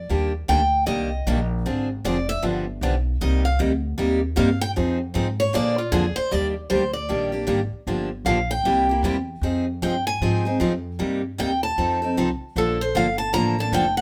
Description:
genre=acoustic string swing (jazz manouche)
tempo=154 BPM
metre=4/4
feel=swing 62% on 8ths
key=C minor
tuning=A4 = 441 Hz
part: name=picked steel-string acoustic guitar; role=second line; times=0.0-14.0 s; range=F4 to Bb5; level=-26 LUFS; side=equal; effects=none
part: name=upright bass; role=bass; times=0.0-14.0 s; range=F1 to Bb2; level=-28 LUFS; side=equal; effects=none
part: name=picked steel-string acoustic guitar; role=accompaniment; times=0.1-13.8 s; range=C3 to A4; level=-26 LUFS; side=equal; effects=none
room=light reverb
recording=none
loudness=-23 LUFS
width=mono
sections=0.0-6.3 A section; 6.3-14.0 A section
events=steel-string acoustic guitar solo 0.0-14.0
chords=0.1 Ebmaj7; 1.7 Dm7b5; 2.4 G7; 3.2 Cm7; 4.8 Fm7; 5.5 Bb7; 6.3 Ebmaj7; 7.9 Gm7; 8.7 C7; 9.4 Fm9; 11.0 Cm7; 11.8 F7; 12.6 Bbmaj7

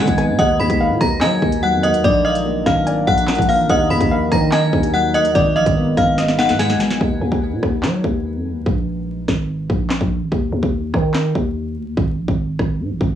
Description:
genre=hip hop, drill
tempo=145 BPM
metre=4/4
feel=half-time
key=Eb harmonic minor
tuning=A4 = 440 Hz
part: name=metallic FM bell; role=melody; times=0.0-7.0 s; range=D5 to Cb7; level=-19 LUFS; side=equal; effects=chorus, low-pass filter, tape echo
part: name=warbly dusty pluck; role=second line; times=0.0-7.0 s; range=Eb5 to Ab5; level=-27 LUFS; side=right 1 dB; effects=chorus, tape echo
part: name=dark concert grand piano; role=accompaniment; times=0.0-7.0 s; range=D3 to Eb5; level=-22 LUFS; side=left 4 dB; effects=none
part: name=deep dark ambient pad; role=sustained chords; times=0.0-7.0 s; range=F3 to Cb5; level=-24 LUFS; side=equal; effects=chorus, built-in reverb
part: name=growling 808-style bass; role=bass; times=0.0-13.2 s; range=Ab1 to Gb3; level=-20 LUFS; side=equal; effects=none
part: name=drill drum kit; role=drums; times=0.1-13.1 s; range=handclaps, hi-hat, kick drum, rim click, snare drum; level=-20 LUFS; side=equal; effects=cassette tape
room=light reverb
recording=home recording on cassette, vinyl crackle, studio ambience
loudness=-15 LUFS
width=side -10 dB against mid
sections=0.0-7.0 A section; 7.0-13.2 B section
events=drum fill 6.2-7.0; break 7.0-13.2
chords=0.4 Ebm; 2.0 Bb; 3.7 Ebm; 5.4 Abm; 7.0 N.C.; 8.7 Absus2; 10.3 N.C.; 12.0 Ab5

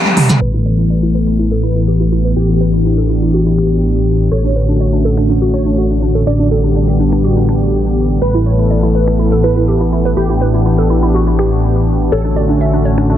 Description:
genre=progressive house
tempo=123 BPM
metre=4/4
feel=straight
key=A mixolydian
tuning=A4 = 440 Hz
part: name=wide unison pluck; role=melody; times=0.0-12.6 s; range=E4 to D5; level=-23 LUFS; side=right 2 dB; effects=phaser, dub echo
part: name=lush unison pad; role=sustained chords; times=0.0-13.2 s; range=D3 to A4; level=-15 LUFS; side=left 1 dB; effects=chorus
part: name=glassy wavetable pluck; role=arpeggios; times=0.0-13.2 s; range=D4 to G5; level=-19 LUFS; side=right 1 dB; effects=chorus, phaser, dub echo
part: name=pop drum kit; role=drums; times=0.1-13.1 s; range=finger snaps, hi-hat, toms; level=-13 LUFS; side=right 1 dB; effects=low-pass filter on snare, low-pass filter on hats, low-pass filter on toms
part: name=dark detuned saw bass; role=bass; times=0.4-13.2 s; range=A1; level=-14 LUFS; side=equal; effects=none
room=light reverb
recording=heavily compressed radio sound, low-pass filter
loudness=-11 LUFS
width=side -11 dB against mid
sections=0.4-13.2 A section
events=break 0.0-0.4; drum fill 0.0-0.4; band accent 0.0; filter sweep on drum 0.4-13.2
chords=0.4 Asus2; 2.4 Em7/A; 4.3 Dmaj7/A; 6.3 G/A; 8.2 Asus2; 10.2 Em7/A; 12.1 Dmaj7/A

